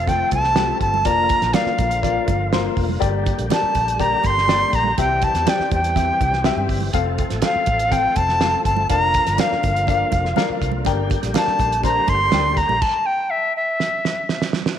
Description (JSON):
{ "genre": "uptempo 1960s-style soul", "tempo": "122 BPM", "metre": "4/4", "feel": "straight", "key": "unclear", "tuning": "A4 = 439 Hz", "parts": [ { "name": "bright reedy jazz flute", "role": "melody", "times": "0.0-14.5 s", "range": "E5 to C6", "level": "-19 LUFS", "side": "equal", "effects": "none" }, { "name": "overdriven tonewheel organ", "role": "sustained chords", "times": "0.0-12.8 s", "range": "D3 to A4", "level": "-29 LUFS", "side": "equal", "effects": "fast rotary speaker, chorus vibrato" }, { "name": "vintage muted fingered electric bass", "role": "bass", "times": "0.0-12.8 s", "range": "F1 to G2", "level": "-25 LUFS", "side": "equal", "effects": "none" }, { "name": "warm upright piano", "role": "accompaniment", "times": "0.1-12.6 s", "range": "A3 to G5", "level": "-25 LUFS", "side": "left 11 dB", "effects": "none" }, { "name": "cloth-damped thuddy drum kit", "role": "drums", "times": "0.1-14.8 s", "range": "crash cymbal, hi-hat, kick drum, snare drum", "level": "-23 LUFS", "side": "right 3 dB", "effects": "none" }, { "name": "congas", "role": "percussion", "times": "0.1-12.8 s", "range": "none", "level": "-32 LUFS", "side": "right 9 dB", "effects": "none" } ], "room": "moderate echo chamber reverb, RT60 2.0 s", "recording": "1960s-style stereo with parts hard left and right", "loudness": "-16 LUFS", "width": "side -9 dB against mid", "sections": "0.0-14.8 A section", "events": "stop 12.8-14.8; drum fill 13.8-14.8", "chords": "0.0 F; 1.1 Bb/F; 3.0 Gm; 5.0 C; 6.9 F; 8.9 Bb/F; 10.9 Gm; 12.8 N.C." }